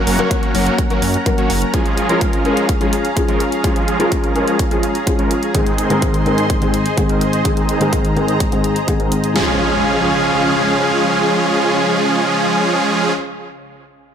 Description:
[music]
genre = EDM, festival progressive house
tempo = 126 BPM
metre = 4/4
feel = straight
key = Db major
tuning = A4 = 440 Hz
[part]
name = supersaw pad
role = sustained chords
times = 0.0-13.1 s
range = Db3 to C6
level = -22 LUFS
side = equal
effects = sidechain pumping
[part]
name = supersaw chords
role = riff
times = 0.0-13.1 s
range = Eb3 to Db5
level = -18 LUFS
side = right 1 dB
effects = sidechain pumping, low-pass filter, tape echo
[part]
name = wide detuned saw bass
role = bass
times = 0.1-1.6 s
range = Gb1 to Gb2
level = -20 LUFS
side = equal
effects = chorus, sidechain pumping
[part]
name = electronic hi-hat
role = drums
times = 0.1-9.3 s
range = none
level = -27 LUFS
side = right 1 dB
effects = studio reverb
[part]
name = felt-muted upright piano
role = accompaniment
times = 0.2-13.1 s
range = Ab2 to Db5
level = -20 LUFS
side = left 2 dB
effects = sidechain pumping, tape echo
[part]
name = big-room dance drum kit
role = drums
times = 0.3-9.5 s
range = kick drum, snare drum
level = -19 LUFS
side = equal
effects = studio reverb
[part]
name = impact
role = sound effects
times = 9.4-13.2 s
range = none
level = -28 LUFS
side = equal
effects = none
[sound]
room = moderate digital room reverb, RT60 1.0 s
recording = none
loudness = -14 LUFS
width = side -8 dB against mid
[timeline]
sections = 0.0-9.4 A section; 9.4-13.2 B section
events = filter sweep on supersaw synth 0.0-9.4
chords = 0.0 Gb; 1.7 Db; 5.5 Ab; 9.4 Db

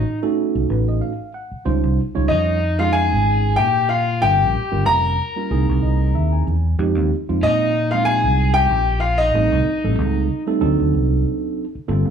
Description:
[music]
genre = jazz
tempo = 94 BPM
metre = 4/4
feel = swing 56% on 16ths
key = unclear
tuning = A4 = 438 Hz
[part]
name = clear concert grand piano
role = melody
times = 0.0-10.4 s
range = Eb5 to Bb5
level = -20 LUFS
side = left 2 dB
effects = none
[part]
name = raw garage guitar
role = second line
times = 0.0-10.4 s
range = Eb4 to Bb4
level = -26 LUFS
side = left 1 dB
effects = overdrive
[part]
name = tine electric piano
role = accompaniment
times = 0.0-12.1 s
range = F3 to G#5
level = -22 LUFS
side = right 5 dB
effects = overdrive
[part]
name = fingered electric bass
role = bass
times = 0.0-12.1 s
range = F1 to Bb2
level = -20 LUFS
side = equal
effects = none
[sound]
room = moderate large studio reverb, RT60 0.9 s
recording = band playing live in one room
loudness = -16 LUFS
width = side -7 dB against mid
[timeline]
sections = 0.0-12.1 A section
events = tine electric piano fill 0.4-1.7, 5.5-6.8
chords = 0.0 B9; 1.7 Dbmaj9#11; 4.2 Gm7b5; 5.5 C7alt; 6.8 Fm9; 9.3 Am7b5; 10.6 D7b9

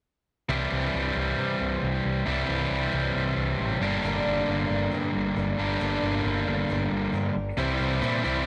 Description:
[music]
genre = rock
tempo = 136 BPM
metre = 4/4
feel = straight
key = unclear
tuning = A4 = 440 Hz
[part]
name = cranked stack guitar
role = riff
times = 0.5-8.5 s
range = G2 to G4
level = -28 LUFS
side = equal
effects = overdrive
[part]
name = growling picked electric bass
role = bass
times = 0.5-8.5 s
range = G1 to C3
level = -33 LUFS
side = equal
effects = overdrive
[part]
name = picked twelve-string acoustic guitar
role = accompaniment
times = 4.0-8.5 s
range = G2 to Bb4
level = -37 LUFS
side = equal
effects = none
[sound]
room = moderate spring reverb, RT60 1.4 s, small room ambience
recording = none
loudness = -27 LUFS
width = mono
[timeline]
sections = 0.5-7.6 A section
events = none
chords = 0.5 C; 3.8 Gm; 7.6 C

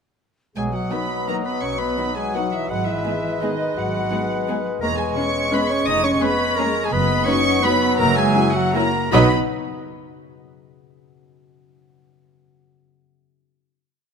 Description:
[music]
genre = classical, orchestral ballroom waltz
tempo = 150-185 BPM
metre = 3/4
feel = rubato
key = B major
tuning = A4 = 440 Hz
[part]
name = warm chamber violin section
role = melody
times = 0.6-9.3 s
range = D#5 to D#6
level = -25 LUFS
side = equal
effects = none
[part]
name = concert flute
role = second line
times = 0.6-9.3 s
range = D#5 to D#6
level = -29 LUFS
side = left 1 dB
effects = none
[part]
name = mellow cor anglais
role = second line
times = 0.6-9.3 s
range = B4 to E5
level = -30 LUFS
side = right 4 dB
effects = none
[part]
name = warm clarinet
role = second line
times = 0.6-9.3 s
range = D#4 to D#5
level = -28 LUFS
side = left 2 dB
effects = none
[part]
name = clear bassoon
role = accompaniment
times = 0.6-9.3 s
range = F#3 to G#3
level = -28 LUFS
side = right 3 dB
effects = none
[part]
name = concert harp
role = arpeggios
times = 0.6-10.3 s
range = E2 to D#6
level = -28 LUFS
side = left 13 dB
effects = none
[part]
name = dark chamber cello section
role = bass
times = 0.6-9.3 s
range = D#3 to D#4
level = -26 LUFS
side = right 4 dB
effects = none
[part]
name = dark chamber double bass section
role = bass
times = 0.6-9.3 s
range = E1 to B1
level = -27 LUFS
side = right 3 dB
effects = none
[part]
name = warm chamber violin section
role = second line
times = 0.9-9.3 s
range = C#4 to D#5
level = -29 LUFS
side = left 1 dB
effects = none
[part]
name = warm chamber viola section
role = accompaniment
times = 0.9-9.3 s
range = D#3 to D#4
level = -26 LUFS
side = right 1 dB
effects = none
[part]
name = mellow French horn section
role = sustained chords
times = 0.9-9.3 s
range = F#3 to E4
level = -30 LUFS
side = left 5 dB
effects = none
[sound]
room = moderate scoring stage reverb, RT60 2.1 s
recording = close, detailed microphones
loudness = -18 LUFS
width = side -6 dB against mid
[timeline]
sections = 0.6-9.1 A section; 9.1-10.3 final chord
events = slowing down 6.4-9.1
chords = 0.6 B; 2.7 G#m7; 4.8 C#m/E; 5.9 C#7/E#; 6.9 B/F#; 8.0 F#7; 9.1 B

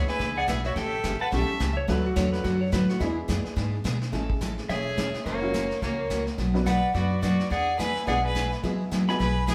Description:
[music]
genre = country, western swing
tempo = 213 BPM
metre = 4/4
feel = swing 59% on 8ths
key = A major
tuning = A4 = 440 Hz
[part]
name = pedal steel guitar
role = melody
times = 0.0-1.7, 4.7-9.5 s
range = A#4 to C#6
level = -31 LUFS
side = equal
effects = none
[part]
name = clear fiddle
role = second line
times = 0.0-1.7, 4.7-9.5 s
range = A#3 to E5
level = -35 LUFS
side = equal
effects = none
[part]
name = honky-tonk upright piano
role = accompaniment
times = 0.0-9.2 s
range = F#3 to B4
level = -36 LUFS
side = equal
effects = none
[part]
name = picked steel-string acoustic guitar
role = accompaniment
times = 0.0-9.5 s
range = B2 to A4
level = -32 LUFS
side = equal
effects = none
[part]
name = upright bass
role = bass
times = 0.0-9.5 s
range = E1 to B2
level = -32 LUFS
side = equal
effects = none
[part]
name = vintage brush drum kit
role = drums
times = 0.1-9.5 s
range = brushed snare drum, hi-hat, kick drum, snare drum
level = -35 LUFS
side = equal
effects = none
[part]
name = clean lap steel guitar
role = second line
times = 1.8-3.2 s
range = E4 to C#5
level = -33 LUFS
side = equal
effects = none
[sound]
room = wet large studio reverb, RT60 0.9 s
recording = band playing live in one room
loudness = -26 LUFS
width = mono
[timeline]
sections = 0.0-4.1 A section; 4.1-9.5 B section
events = none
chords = 0.0 E7; 0.8 A7; 1.9 D; 3.0 E7; 4.1 Amaj7; 5.3 F#7; 6.4 Bm; 7.5 E7; 8.6 Eadd9

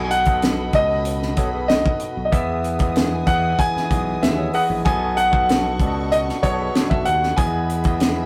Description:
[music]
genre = lush 1970s-style soul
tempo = 95 BPM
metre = 4/4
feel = straight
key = E major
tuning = A4 = 442 Hz
[part]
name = bright concert grand piano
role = melody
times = 0.0-8.3 s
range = C#5 to G#5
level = -24 LUFS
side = equal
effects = none
[part]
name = warm studio string section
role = second line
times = 0.0-8.3 s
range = E4 to D#6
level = -37 LUFS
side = equal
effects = none
[part]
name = barky tine electric piano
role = accompaniment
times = 0.0-8.3 s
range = B2 to F#5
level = -28 LUFS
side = equal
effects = overdrive
[part]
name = fingered electric bass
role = bass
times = 0.0-8.3 s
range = A#1 to E2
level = -29 LUFS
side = equal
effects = none
[part]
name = tight funk drum kit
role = drums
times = 0.1-8.2 s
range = hi-hat, kick drum, snare drum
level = -24 LUFS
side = equal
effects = none
[part]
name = mellow electric guitar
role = riff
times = 1.4-7.4 s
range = D#4 to C#5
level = -35 LUFS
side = equal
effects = none
[sound]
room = moderate studio reverb, RT60 0.7 s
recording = rough rehearsal-room recording, warm saturation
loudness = -20 LUFS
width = mono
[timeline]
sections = 0.0-8.3 A section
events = none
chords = 0.0 B7; 2.3 Emaj7; 4.9 B7; 7.4 Emaj7

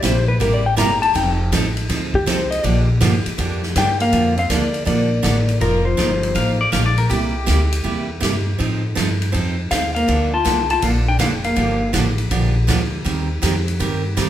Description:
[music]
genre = country, western swing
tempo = 161 BPM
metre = 4/4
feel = swing 66% on 8ths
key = Bb major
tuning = A4 = 440 Hz
[part]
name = clean lap steel guitar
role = melody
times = 0.0-6.6, 9.7-11.9 s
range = G4 to Bb5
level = -21 LUFS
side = left 4 dB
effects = none
[part]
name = picked steel-string acoustic guitar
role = accompaniment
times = 0.0-14.3 s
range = C3 to Bb4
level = -23 LUFS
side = right 4 dB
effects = none
[part]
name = upright bass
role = bass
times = 0.0-14.3 s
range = F1 to A2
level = -20 LUFS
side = equal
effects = none
[part]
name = swinging big-band drum kit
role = drums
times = 0.0-14.3 s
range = hi-hat, kick drum, ride cymbal, snare drum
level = -25 LUFS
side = equal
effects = none
[part]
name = hollow-body jazz guitar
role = second line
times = 3.8-6.6, 9.7-11.9 s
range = F3 to F4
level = -22 LUFS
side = equal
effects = none
[part]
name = pedal steel guitar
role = second line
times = 6.4-8.0 s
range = G4 to F5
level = -23 LUFS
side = left 2 dB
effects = none
[sound]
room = wet large studio reverb, RT60 1.2 s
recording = band playing live in one room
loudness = -16 LUFS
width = side -11 dB against mid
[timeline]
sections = 0.0-4.1 A section; 4.1-14.3 B section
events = electric slide guitar solo 0.0-4.1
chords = 0.0 C7; 1.2 F7; 2.6 Bb6; 4.1 Bbmaj7; 5.6 F7sus4; 7.1 C7; 8.6 F7; 10.1 Bbmaj7; 11.6 Gm7; 13.1 Eb6

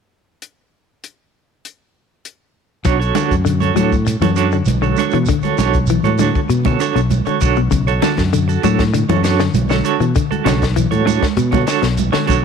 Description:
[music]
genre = afrobeat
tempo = 98 BPM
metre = 4/4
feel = straight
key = B minor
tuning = A4 = 440 Hz
[part]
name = compact cocktail drum kit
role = drums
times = 0.4-12.4 s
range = hi-hat, kick drum, snare drum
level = -21 LUFS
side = left 3 dB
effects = none
[part]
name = clean electric guitar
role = stabs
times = 2.8-12.4 s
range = D4 to C#5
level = -19 LUFS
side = right 13 dB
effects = tremolo
[part]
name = fingered electric bass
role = bass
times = 2.8-12.4 s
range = B1 to B2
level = -18 LUFS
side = left 1 dB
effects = none
[part]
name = semi-hollow electric guitar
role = arpeggios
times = 2.9-12.4 s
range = B2 to F#3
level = -20 LUFS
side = left 13 dB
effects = spring reverb
[part]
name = shekere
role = percussion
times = 2.9-12.4 s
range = none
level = -26 LUFS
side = right 6 dB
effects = none
[part]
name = congas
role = percussion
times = 3.1-12.4 s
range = none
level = -23 LUFS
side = right 13 dB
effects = none
[sound]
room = studio reverb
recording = 1960s-style stereo with parts hard left and right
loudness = -13 LUFS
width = side -6 dB against mid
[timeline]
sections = 0.4-2.9 A section; 2.9-12.4 B section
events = none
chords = 0.4 N.C.; 2.9 Bm9

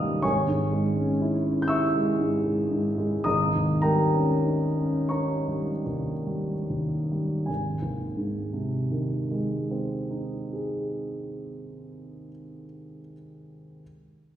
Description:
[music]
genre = classical, romantic nocturne for solo piano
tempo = 23-44 BPM (dotted quarters)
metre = 6/8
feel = rubato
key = Ab major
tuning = A4 = 436 Hz
[part]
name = warm grand piano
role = solo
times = 0.0-13.8 s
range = Ab1 to G6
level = -25 LUFS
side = equal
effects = none
[sound]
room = wet recital hall reverb, RT60 1.6 s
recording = recorded in a church or concert hall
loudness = -24 LUFS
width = side -11 dB against mid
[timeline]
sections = 0.0-7.5 A section; 7.5-11.7 B section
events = slowing down 0.0-7.5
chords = 0.2 Dbm/Ab; 3.2 Eb7/Ab; 7.5 Ab

